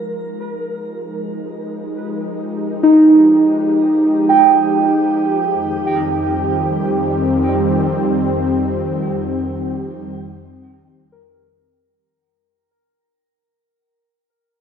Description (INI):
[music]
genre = ambient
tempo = free time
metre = none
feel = none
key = unclear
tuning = A4 = 440 Hz
[part]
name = warm analog pad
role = sustained chords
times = 0.0-11.8 s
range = F2 to Bb4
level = -20 LUFS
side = equal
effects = chorus, shimmer reverb
[part]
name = muted felt-like synth keys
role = arpeggios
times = 0.0-14.1 s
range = Eb4 to G5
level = -15 LUFS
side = right 2 dB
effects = chorus, dub echo, shimmer reverb
[sound]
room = wet echo chamber reverb, RT60 2.4 s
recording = echo-heavy mix, nothing above 10.9 kHz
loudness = -13 LUFS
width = side -7 dB against mid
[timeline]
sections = 0.0-11.8 A section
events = fade-in on analog synth pad 0.0-11.8; fade-out 7.6-11.8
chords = 0.0 Fm9; 5.5 Cm/F